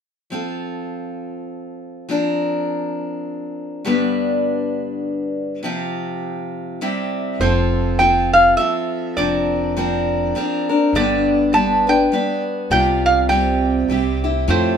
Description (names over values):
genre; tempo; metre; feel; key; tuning
folk; 102 BPM; 3/4; swing 59% on 8ths; F major; A4 = 440 Hz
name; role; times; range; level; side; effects
picked steel-string acoustic guitar; accompaniment; 0.3-14.8 s; G2 to B4; -20 LUFS; left 1 dB; none
metal-body resonator slide guitar; melody; 7.4-14.8 s; C5 to A5; -17 LUFS; right 1 dB; none
upright bass; bass; 7.4-14.8 s; F1 to F2; -23 LUFS; right 1 dB; none
mellow French horn; second line; 13.3-14.8 s; A2 to C3; -21 LUFS; right 7 dB; none
room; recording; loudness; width
moderate studio reverb, RT60 0.5 s; minimal, uncompressed stereo recording; -17 LUFS; side -7 dB against mid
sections
0.3-7.4 A section; 7.4-14.8 B section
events
none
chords
0.3 F; 2.1 Bbadd9/F; 3.9 G; 5.6 Csus4; 6.8 C; 7.4 F; 9.2 Bbadd9/F; 10.9 G; 12.7 Csus4; 13.9 C